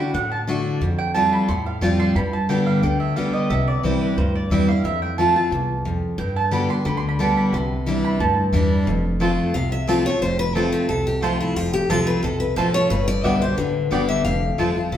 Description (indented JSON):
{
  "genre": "bluegrass",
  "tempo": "179 BPM",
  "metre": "4/4",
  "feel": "straight",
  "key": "unclear",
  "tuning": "A4 = 435 Hz",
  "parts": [
    { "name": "picked steel-string acoustic guitar", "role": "accompaniment", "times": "0.0-15.0 s", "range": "E2 to G4", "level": "-21 LUFS", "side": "left 1 dB", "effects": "none" },
    { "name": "mandolin", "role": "stabs", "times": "0.0-14.7 s", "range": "B3 to C6", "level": "-25 LUFS", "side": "right 4 dB", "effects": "none" },
    { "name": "upright bass", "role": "bass", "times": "0.1-15.0 s", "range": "F1 to G2", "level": "-26 LUFS", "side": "equal", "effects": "none" },
    { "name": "picked steel-string acoustic guitar", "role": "melody", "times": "9.5-14.9 s", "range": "E4 to F5", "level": "-23 LUFS", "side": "left 2 dB", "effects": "none" }
  ],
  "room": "wet large studio reverb, RT60 1.4 s",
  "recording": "band playing live in one room",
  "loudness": "-18 LUFS",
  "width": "side -10 dB against mid",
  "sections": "0.0-8.9 A section; 8.9-15.0 A section",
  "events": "mandolin solo 0.0-8.9; steel-string acoustic guitar solo 8.9-15.0",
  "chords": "0.0 D; 0.8 Fadd9; 2.2 G; 3.5 C; 4.8 F; 6.2 G; 7.5 Cadd9; 8.9 F; 12.9 G; 14.3 F"
}